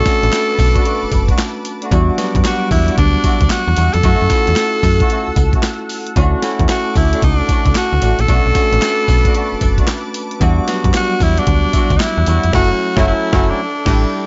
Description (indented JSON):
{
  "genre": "R&B, new jack swing",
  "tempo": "113 BPM",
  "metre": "4/4",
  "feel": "swing 64% on 16ths",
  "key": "unclear",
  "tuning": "A4 = 435 Hz",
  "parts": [
    { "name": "raspy tenor saxophone", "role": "melody", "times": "0.0-14.3 s", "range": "D4 to A4", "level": "-20 LUFS", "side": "equal", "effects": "none" },
    { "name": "bell-like tine electric piano", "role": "accompaniment", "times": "0.0-14.3 s", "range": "F#3 to F#4", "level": "-24 LUFS", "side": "equal", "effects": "none" },
    { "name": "lush unison pad", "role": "sustained chords", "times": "0.0-14.3 s", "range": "G3 to E6", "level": "-31 LUFS", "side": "equal", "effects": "chorus, phaser" },
    { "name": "dark horn section", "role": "stabs", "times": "0.0-14.0 s", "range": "G3 to G4", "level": "-27 LUFS", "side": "equal", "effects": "none" },
    { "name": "slap-like FM bass", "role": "bass", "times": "0.0-14.1 s", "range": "F#1 to F#2", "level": "-18 LUFS", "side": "equal", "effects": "none" },
    { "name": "boom bap sampler-style drum kit", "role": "drums", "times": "0.1-14.1 s", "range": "crash cymbal, handclaps, hi-hat, kick drum, snare drum, tambourine", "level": "-19 LUFS", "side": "equal", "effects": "none" }
  ],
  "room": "little or no reverb",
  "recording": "nothing above 7.7 kHz",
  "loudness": "-15 LUFS",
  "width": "mono",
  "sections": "0.0-14.3 A section",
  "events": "band accent 12.5-14.3",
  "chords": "0.0 Bm7; 1.9 Em9; 4.0 F#m7; 6.2 Dmaj7; 8.3 Bm7; 10.4 Em9; 12.5 F#m7; 13.6 A7sus4",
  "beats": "0.32 0.85 1.38 | 1.91 2.44 2.98 3.51 | 4.04 4.57 5.10 5.63 | 6.16 6.69 7.22 7.75 | 8.28 8.81 9.35 9.88 | 10.41 10.94 11.47 12.00 | 12.53 13.06 13.59 14.12"
}